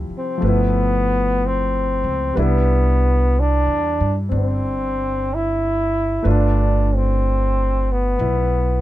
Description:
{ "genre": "jazz ballad", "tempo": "62 BPM", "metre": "4/4", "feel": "swing 67% on 8ths", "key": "C major", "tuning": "A4 = 440 Hz", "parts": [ { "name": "warm concert grand piano", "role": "accompaniment", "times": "0.0-8.8 s", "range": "C3 to B4", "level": "-25 LUFS", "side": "left 1 dB", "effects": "none" }, { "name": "upright bass", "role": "bass", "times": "0.0-8.8 s", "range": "G1 to G2", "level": "-19 LUFS", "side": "equal", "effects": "none" }, { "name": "bright trombone", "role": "melody", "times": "0.2-8.8 s", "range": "A3 to E4", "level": "-21 LUFS", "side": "left 1 dB", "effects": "none" } ], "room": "little or no reverb", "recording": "close, detailed microphones", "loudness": "-16 LUFS", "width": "side -14 dB against mid", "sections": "0.0-8.8 A section", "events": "none", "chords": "0.4 G13; 2.4 Cmaj9; 6.3 G9" }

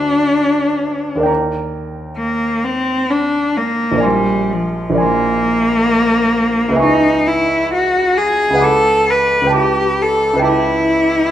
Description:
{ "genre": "classical, impressionist duo for cello and grand piano", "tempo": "66 BPM", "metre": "3/4", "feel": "rubato", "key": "unclear", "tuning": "A4 = 437 Hz", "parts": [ { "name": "rich cello", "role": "melody", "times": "0.0-11.3 s", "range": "F3 to B4", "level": "-14 LUFS", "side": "left 1 dB", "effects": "none" }, { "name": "clear grand piano", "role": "accompaniment", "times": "0.0-11.3 s", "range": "Bb1 to D6", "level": "-18 LUFS", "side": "right 2 dB", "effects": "none" } ], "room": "wet recital hall reverb, RT60 1.5 s", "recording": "minimal, uncompressed stereo recording", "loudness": "-13 LUFS", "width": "side -11 dB against mid", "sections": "0.0-11.3 A section", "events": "none", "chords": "0.0 D9; 1.3 Ebmaj7; 4.0 Bb9; 6.8 C#m7; 8.6 Bm7/C#; 9.6 G69/C#" }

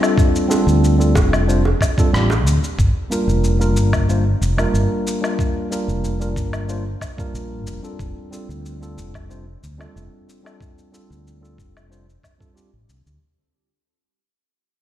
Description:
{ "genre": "sunset chillout", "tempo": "92 BPM", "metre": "4/4", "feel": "straight", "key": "unclear", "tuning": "A4 = 439 Hz", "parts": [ { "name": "mellow tine electric piano", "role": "accompaniment", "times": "0.0-12.7 s", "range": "G3 to C5", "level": "-22 LUFS", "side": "equal", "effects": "auto-pan, digital delay" }, { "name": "electronic woodblock, cabasa and rim click", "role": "drums", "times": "0.0-13.2 s", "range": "none", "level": "-27 LUFS", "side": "left 2 dB", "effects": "none" }, { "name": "electronic kick drum", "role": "drums", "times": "0.2-12.5 s", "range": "none", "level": "-19 LUFS", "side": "equal", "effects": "none" }, { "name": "bongos", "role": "percussion", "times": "0.5-2.4 s", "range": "none", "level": "-27 LUFS", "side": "right 3 dB", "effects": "none" }, { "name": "mellow fretless electric bass", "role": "bass", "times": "0.7-13.2 s", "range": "F1 to D2", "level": "-19 LUFS", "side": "equal", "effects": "none" } ], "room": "light reverb", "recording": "played on a big sound system in a bare room, stone room reverb", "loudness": "-16 LUFS", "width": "side -12 dB against mid", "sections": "0.0-13.2 A section", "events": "fade-out 0.0-13.2", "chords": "0.0 F69; 2.8 Gm7; 8.0 F69" }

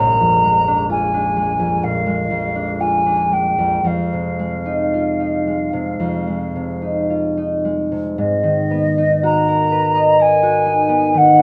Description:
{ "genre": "classical, impressionist duo for flute and harp", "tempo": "54-66 BPM", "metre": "4/4", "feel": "rubato", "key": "F minor, G# minor from 8.2 s", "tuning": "A4 = 436 Hz", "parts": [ { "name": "mellow hollow silver concert flute", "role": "melody", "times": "0.0-11.4 s", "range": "D#5 to A#5", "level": "-19 LUFS", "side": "equal", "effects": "none" }, { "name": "concert harp", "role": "accompaniment", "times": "0.0-11.4 s", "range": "Bb1 to D#5", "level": "-20 LUFS", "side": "equal", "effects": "none" } ], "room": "light reverb", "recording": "faint mains hum", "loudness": "-17 LUFS", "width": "mono", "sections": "0.0-8.2 A section; 8.2-11.4 B section", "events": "none", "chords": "0.0 Bb7; 3.9 Fm7; 8.2 G#m9" }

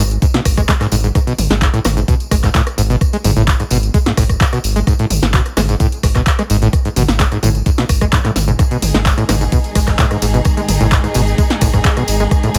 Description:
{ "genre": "acid house", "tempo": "129 BPM", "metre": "4/4", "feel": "straight", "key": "G# phrygian", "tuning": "A4 = 440 Hz", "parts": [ { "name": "acid bass, saw", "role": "riff", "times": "0.0-12.6 s", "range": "G#2 to G#3", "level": "-20 LUFS", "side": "equal", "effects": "overdrive, lush chorus" }, { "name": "round analog bass", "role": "bass", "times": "0.0-12.6 s", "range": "G#1", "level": "-20 LUFS", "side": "equal", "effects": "sidechain pumping" }, { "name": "punchy analog drum machine", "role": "drums", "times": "0.1-12.6 s", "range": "handclaps, hi-hat, ride cymbal, rim click, snare drum, toms", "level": "-21 LUFS", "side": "equal", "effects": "none" }, { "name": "tambourine", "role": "percussion", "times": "0.1-12.6 s", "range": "none", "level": "-30 LUFS", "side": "equal", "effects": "none" }, { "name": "electronic kick drum", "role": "drums", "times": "0.2-12.4 s", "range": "none", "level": "-17 LUFS", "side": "equal", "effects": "none" }, { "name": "dark symphonic string section", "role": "sustained chords", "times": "8.6-12.6 s", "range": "G#2 to G#4", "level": "-24 LUFS", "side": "equal", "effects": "sidechain pumping" } ], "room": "little or no reverb", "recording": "none", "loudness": "-14 LUFS", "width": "mono", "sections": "0.0-12.6 A section", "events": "drum fill 8.1-8.6", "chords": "0.0 G#5" }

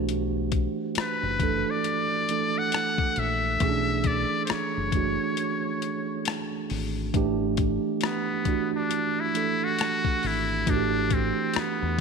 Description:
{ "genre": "R&B, neo-soul", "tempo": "68 BPM", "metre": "4/4", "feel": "swing 60% on 16ths", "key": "unclear", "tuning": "A4 = 440 Hz", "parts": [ { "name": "mellow tine electric piano", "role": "accompaniment", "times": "0.0-12.0 s", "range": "E3 to C5", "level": "-28 LUFS", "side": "right 7 dB", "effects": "fast stereo tremolo" }, { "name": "deep dub fingered electric bass", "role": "bass", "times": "0.0-12.0 s", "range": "F#1 to E2", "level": "-31 LUFS", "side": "left 2 dB", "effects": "none" }, { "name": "boom bap sampler-style drum kit", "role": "drums", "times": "0.1-12.0 s", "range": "hi-hat, kick drum, rim click", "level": "-29 LUFS", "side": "left 6 dB", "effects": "none" }, { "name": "trumpet with metal mute", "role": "melody", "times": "1.0-12.0 s", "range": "B3 to F#5", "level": "-28 LUFS", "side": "left 3 dB", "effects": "none" } ], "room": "moderate echo chamber reverb, RT60 2.5 s", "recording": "1960s-style stereo with parts hard left and right", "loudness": "-24 LUFS", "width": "side -5 dB against mid", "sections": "0.0-7.1 A section; 7.1-12.0 A section", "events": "break 5.4-7.1", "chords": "0.0 Bm11; 7.1 A9sus4" }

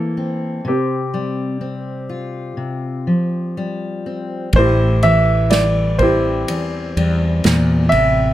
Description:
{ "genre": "acoustic folk-pop ballad", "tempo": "62 BPM", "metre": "4/4", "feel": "straight", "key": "unclear", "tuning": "A4 = 440 Hz", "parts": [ { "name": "warm upright piano", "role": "melody", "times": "0.0-8.3 s", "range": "C4 to E5", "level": "-18 LUFS", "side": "right 1 dB", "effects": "plate reverb" }, { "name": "fingerpicked steel-string acoustic guitar", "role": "accompaniment", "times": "0.0-8.3 s", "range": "E2 to F4", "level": "-20 LUFS", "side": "left 1 dB", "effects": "none" }, { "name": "mellow fretless electric bass", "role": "bass", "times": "4.5-8.3 s", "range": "A1 to E2", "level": "-18 LUFS", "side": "equal", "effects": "none" }, { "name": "unplugged drum kit", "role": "drums", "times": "4.5-8.1 s", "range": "kick drum, ride cymbal, snare drum", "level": "-23 LUFS", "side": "right 1 dB", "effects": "none" } ], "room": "light reverb", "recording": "none", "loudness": "-15 LUFS", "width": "side -13 dB against mid", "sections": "0.0-4.5 A section; 4.5-8.3 B section", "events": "none", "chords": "0.0 C7; 0.7 Fsus2/C; 4.5 Am7" }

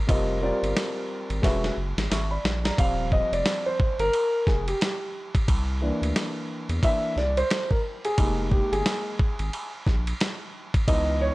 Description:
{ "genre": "hip hop, jazz-hop", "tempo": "89 BPM", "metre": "4/4", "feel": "swing 60% on 16ths", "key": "unclear", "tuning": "A4 = 440 Hz", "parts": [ { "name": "dark concert grand piano", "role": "accompaniment", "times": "0.1-11.3 s", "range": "E3 to Db6", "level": "-26 LUFS", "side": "equal", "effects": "none" }, { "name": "saturated sub bass", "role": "bass", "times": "0.1-11.3 s", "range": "Eb1 to E2", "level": "-28 LUFS", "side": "equal", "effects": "tube saturation" }, { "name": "dusty soul sampler-style drum kit", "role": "drums", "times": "0.1-11.1 s", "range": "hi-hat, kick drum, ride cymbal, snare drum", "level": "-26 LUFS", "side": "equal", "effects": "vintage 12-bit sampler grit" } ], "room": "little or no reverb", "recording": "dry, gritty hardware recording", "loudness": "-23 LUFS", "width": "side -20 dB against mid", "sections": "0.0-2.8 A section; 2.8-11.3 B section", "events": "drum fill 1.4-2.8; grand piano solo 2.8-11.3", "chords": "0.1 F7(no3); 1.4 E; 2.8 Eb69; 5.5 C7; 8.2 Fm11" }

